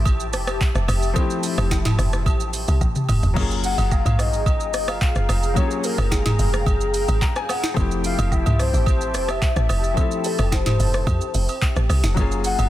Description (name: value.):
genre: amapiano.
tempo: 109 BPM.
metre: 4/4.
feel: straight.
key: unclear.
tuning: A4 = 440 Hz.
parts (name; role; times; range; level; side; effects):
warm concert grand piano; accompaniment; 0.0-12.7 s; F3 to A#5; -29 LUFS; left 5 dB; none.
hollow soft pad; sustained chords; 0.0-12.7 s; G4 to A#5; -31 LUFS; equal; ensemble chorus.
woody log drum bass; bass; 0.0-12.7 s; F1 to F2; -22 LUFS; equal; none.
afro-pop drum kit; drums; 0.1-12.7 s; crash cymbal, handclaps, hi-hat, kick drum, rim click, shaker, snare drum, toms; -22 LUFS; equal; none.
agogo bells and woodblock; percussion; 0.1-12.7 s; none; -32 LUFS; right 7 dB; none.
soft octave-layered synth lead; melody; 3.6-12.7 s; G#4 to F#5; -26 LUFS; left 2 dB; chorus, phaser, tape echo.
room: digital ambience.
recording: dense, heavily limited modern master.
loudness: -18 LUFS.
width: side -14 dB against mid.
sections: 0.0-12.7 A section.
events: drum fill 2.8-3.4; grand piano fill 6.9-7.8.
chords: 0.0 Fmaj9; 3.4 F#maj9; 7.8 Fmaj9; 12.2 F#maj9.